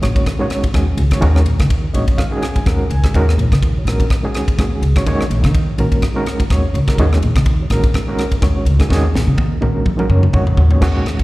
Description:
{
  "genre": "electric jazz fusion",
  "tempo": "125 BPM",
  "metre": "4/4",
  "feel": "swing 56% on 16ths",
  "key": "Eb minor",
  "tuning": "A4 = 440 Hz",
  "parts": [
    { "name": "overdriven reed electric piano", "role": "accompaniment", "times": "0.0-11.2 s", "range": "Bb2 to Ab5", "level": "-20 LUFS", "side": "right 1 dB", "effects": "fast tremolo, slapback echo" },
    { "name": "upright bass", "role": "bass", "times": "0.0-11.2 s", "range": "Bb1 to Eb3", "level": "-15 LUFS", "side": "equal", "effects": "none" },
    { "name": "crisp fusion drum kit", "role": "drums", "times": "0.0-11.2 s", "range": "crash cymbal, kick drum, ride cymbal, rim click, snare drum, toms", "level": "-17 LUFS", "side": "equal", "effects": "none" }
  ],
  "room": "small room ambience",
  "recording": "live gig heard through the venue's PA, recital hall reverb",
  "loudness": "-13 LUFS",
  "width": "side -19 dB against mid",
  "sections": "0.0-10.8 A section",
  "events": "reed electric piano fill 1.7-3.1, 9.9-10.8; drum fill 8.9-10.8",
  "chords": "0.0 Ebm7"
}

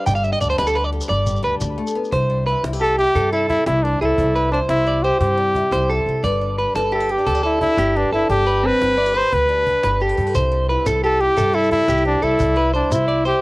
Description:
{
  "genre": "highlife guitar band",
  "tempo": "117 BPM (dotted quarters)",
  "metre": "12/8",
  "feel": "straight",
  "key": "C major",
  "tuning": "A4 = 437 Hz",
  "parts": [
    { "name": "picked old ladder-braced acoustic guitar", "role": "accompaniment", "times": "0.0-13.4 s", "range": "C3 to C5", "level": "-28 LUFS", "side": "left 4 dB", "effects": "cassette tape" },
    { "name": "electric guitar at the edge of break-up", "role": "arpeggios", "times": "0.0-13.4 s", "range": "C4 to G5", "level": "-21 LUFS", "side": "right 2 dB", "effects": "cassette tape, analog delay" },
    { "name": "upright bass", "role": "bass", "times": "0.1-13.3 s", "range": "G1 to G2", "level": "-23 LUFS", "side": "equal", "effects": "none" },
    { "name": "cajon", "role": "drums", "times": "0.1-13.3 s", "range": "none", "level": "-29 LUFS", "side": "equal", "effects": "cassette tape" },
    { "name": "shekere", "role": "percussion", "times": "0.1-2.1, 10.3-13.0 s", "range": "none", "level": "-26 LUFS", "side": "equal", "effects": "none" },
    { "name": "warm trumpet", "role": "melody", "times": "2.8-13.4 s", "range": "D4 to C5", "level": "-18 LUFS", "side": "equal", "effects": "none" }
  ],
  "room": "light reverb",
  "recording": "home recording on cassette",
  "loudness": "-16 LUFS",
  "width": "side -21 dB against mid",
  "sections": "0.0-2.1 A section; 2.1-13.4 B section",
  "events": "clean electric guitar solo 0.0-2.1; kick and snare drop out 1.1-2.1",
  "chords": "0.0 G; 2.1 C; 6.2 G; 10.3 C"
}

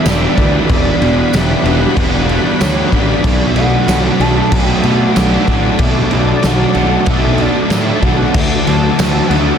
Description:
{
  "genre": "rock, shoegaze and dream pop",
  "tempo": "94 BPM",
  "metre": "4/4",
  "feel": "straight",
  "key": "unclear",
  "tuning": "A4 = 439 Hz",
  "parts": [
    { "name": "pure sine lead", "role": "melody", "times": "0.0-9.6 s", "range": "C#5 to A5", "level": "-22 LUFS", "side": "right 2 dB", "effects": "chorus, phaser, digital delay" },
    { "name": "analog string pad", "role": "sustained chords", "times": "0.0-9.6 s", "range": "D4 to B5", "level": "-23 LUFS", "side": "left 1 dB", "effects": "ensemble chorus" },
    { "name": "picked twelve-string acoustic guitar", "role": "arpeggios", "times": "0.0-9.6 s", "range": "E3 to G4", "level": "-26 LUFS", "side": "left 12 dB", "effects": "wide subtle chorus, digital delay" },
    { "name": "overdriven semi-hollow guitar", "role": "riff", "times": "0.0-9.6 s", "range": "E2 to D4", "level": "-18 LUFS", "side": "right 15 dB", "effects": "reverse reverb" },
    { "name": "thick fuzz guitar", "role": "riff", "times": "0.0-9.6 s", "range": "B2 to G4", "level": "-19 LUFS", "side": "left 14 dB", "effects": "distortion, analog chorus" },
    { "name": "fuzz picked electric bass", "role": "bass", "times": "0.1-9.5 s", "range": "E1 to B2", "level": "-17 LUFS", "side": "equal", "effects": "overdrive" },
    { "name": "raw garage drum kit", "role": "drums", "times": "0.1-9.5 s", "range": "crash cymbal, kick drum, snare drum", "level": "-16 LUFS", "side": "equal", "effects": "none" },
    { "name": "tambourine", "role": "percussion", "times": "0.1-9.1 s", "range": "none", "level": "-29 LUFS", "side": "right 10 dB", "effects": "none" }
  ],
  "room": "studio reverb",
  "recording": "dense, heavily limited modern master",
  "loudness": "-10 LUFS",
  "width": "side -8 dB against mid",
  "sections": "0.0-8.3 A section; 8.3-9.6 A section",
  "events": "none",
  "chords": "0.0 Em7; 3.2 Bm7; 8.3 Dadd9"
}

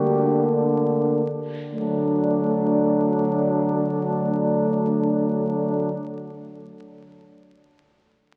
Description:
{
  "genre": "classical, hymn-like piece for brass band",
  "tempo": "33 BPM (dotted quarters)",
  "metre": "6/8",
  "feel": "rubato",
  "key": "D major",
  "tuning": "A4 = 440 Hz",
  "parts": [
    { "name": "mellow flugelhorn", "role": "melody", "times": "0.0-5.9 s", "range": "D4 to G4", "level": "-30 LUFS", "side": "equal", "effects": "none" },
    { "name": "warm French horn section", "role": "second line", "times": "0.0-5.9 s", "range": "D4", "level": "-31 LUFS", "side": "equal", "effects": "none" },
    { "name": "clear euphonium", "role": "accompaniment", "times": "0.0-5.9 s", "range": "D3 to F#3", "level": "-31 LUFS", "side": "equal", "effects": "none" },
    { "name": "mellow euphonium", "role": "accompaniment", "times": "0.0-5.9 s", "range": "A3 to Bb3", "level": "-27 LUFS", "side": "equal", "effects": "none" },
    { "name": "mellow tuba", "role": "bass", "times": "0.0-5.9 s", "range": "D2", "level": "-31 LUFS", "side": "equal", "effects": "none" }
  ],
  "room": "wet church reverb, RT60 3.3 s",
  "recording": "very old 78 rpm record, vinyl crackle",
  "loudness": "-22 LUFS",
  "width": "mono",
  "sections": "0.0-1.7 A section; 1.7-5.4 B section",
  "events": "slowing down 0.0-1.7",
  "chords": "0.0 Gm/D; 1.7 D"
}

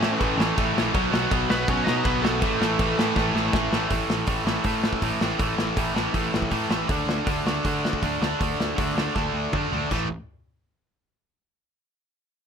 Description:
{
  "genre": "punk rock",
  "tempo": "160 BPM",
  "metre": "4/4",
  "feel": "straight",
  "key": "unclear",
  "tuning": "A4 = 440 Hz",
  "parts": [
    { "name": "cranked stack guitar", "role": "melody", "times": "0.0-3.5 s", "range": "A3 to D#5", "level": "-28 LUFS", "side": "equal", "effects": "overdrive" },
    { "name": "distorted electric guitar", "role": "riff", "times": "0.0-10.1 s", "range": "A2 to D4", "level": "-28 LUFS", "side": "left 14 dB", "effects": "overdrive" },
    { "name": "high-gain distorted guitar", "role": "riff", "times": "0.0-3.9 s", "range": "A2 to B3", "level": "-30 LUFS", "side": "left 1 dB", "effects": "distortion" },
    { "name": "overdriven semi-hollow guitar", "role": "riff", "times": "0.0-10.1 s", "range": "A2 to D4", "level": "-27 LUFS", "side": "right 17 dB", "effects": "none" },
    { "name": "fuzz picked electric bass", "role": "bass", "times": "0.0-10.1 s", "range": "A1 to D3", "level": "-30 LUFS", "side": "equal", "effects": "overdrive" },
    { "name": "loose indie drum kit", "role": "drums", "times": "0.0-10.0 s", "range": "crash cymbal, hi-hat, kick drum, snare drum, splash cymbal, toms", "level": "-27 LUFS", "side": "equal", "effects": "none" }
  ],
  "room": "little or no reverb",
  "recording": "none",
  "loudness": "-21 LUFS",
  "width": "side -7 dB against mid",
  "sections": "0.0-3.9 A section; 3.9-9.9 B section; 9.9-11.4 C section",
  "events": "drum fill 3.2-3.9, 9.2-9.9",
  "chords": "0.0 A; 0.9 B; 2.4 A5; 6.9 D5; 9.9 A5"
}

